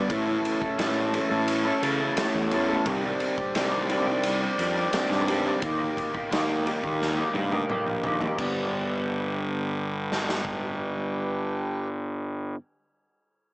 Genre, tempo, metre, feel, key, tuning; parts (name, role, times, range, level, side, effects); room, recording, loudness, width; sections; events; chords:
psychedelic rock; 87 BPM; 4/4; straight; A4 = 440 Hz
pedal harmonium; sustained chords; 0.0-11.9 s; D4 to A5; -33 LUFS; right 1 dB
electric guitar through a small old amp; riff; 0.0-12.6 s; G2 to A4; -27 LUFS; equal; rotary speaker
fuzz fingered electric bass; bass; 0.1-12.5 s; G1 to C#3; -30 LUFS; equal; overdrive
raw garage drum kit; drums; 0.1-10.6 s; crash cymbal, kick drum, ride cymbal, snare drum, toms; -31 LUFS; equal
light reverb, small room ambience; small speaker sound; -24 LUFS; side -26 dB against mid
0.0-8.4 A section; 8.4-11.1 B section
drum fill 7.0-8.4
0.1 A; 2.9 Cmadd9; 5.6 Eb; 8.4 G